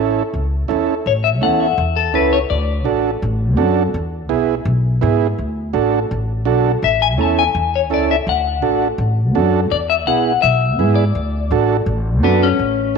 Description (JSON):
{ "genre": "latin, cumbia", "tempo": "166 BPM", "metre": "4/4", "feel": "straight", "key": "A major", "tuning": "A4 = 438 Hz", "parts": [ { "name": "overdriven combo organ", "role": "accompaniment", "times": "0.0-13.0 s", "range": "B3 to A4", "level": "-19 LUFS", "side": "right 8 dB", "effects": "none" }, { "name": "upright bass", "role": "bass", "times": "0.0-13.0 s", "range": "A1 to G#2", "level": "-19 LUFS", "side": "left 1 dB", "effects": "none" }, { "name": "clean electric guitar", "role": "melody", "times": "1.1-2.9, 6.8-13.0 s", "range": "B3 to A5", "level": "-18 LUFS", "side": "left 11 dB", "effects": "spring reverb, slapback echo" } ], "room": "moderate echo chamber reverb, RT60 1.7 s, small room ambience", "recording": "1960s-style stereo with parts hard left and right", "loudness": "-14 LUFS", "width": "side -5 dB against mid", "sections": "0.0-1.1 A section; 1.1-12.6 B section", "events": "none", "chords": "0.0 A; 2.5 D; 3.9 E; 5.4 D; 6.8 A; 8.3 D; 9.7 E; 11.2 D" }